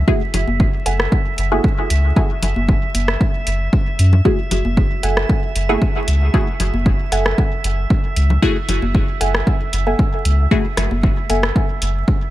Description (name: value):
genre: dub techno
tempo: 115 BPM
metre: 4/4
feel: straight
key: F# minor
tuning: A4 = 440 Hz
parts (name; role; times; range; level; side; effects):
- soft dub sub bass; bass; 0.0-12.0 s; F#1 to F#2; -17 LUFS; equal; sidechain pumping
- drifting glass-harmonics texture; texture; 0.0-12.3 s; E5; -28 LUFS; right 5 dB; chorus, built-in reverb, sidechain pumping
- filtered dub chord stab; stabs; 0.1-10.7 s; A3 to G#4; -24 LUFS; equal; phaser, dub echo
- electronic kick drum; drums; 0.1-12.2 s; none; -17 LUFS; equal; none
- punchy analog drum machine; drums; 0.3-11.9 s; hi-hat, rim click; -23 LUFS; left 1 dB; none
- congas; percussion; 0.3-11.4 s; none; -26 LUFS; left 2 dB; sidechain pumping on perc, dub echo
- warbly dusty pluck; riff; 0.9-1.6, 5.0-11.4 s; A4 to G#5; -26 LUFS; right 1 dB; chorus, vintage 12-bit sampler grit, sidechain pumping, dub echo
room: little or no reverb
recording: vinyl crackle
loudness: -15 LUFS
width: side -15 dB against mid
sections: 0.0-12.3 A section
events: none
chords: 0.0 F#m9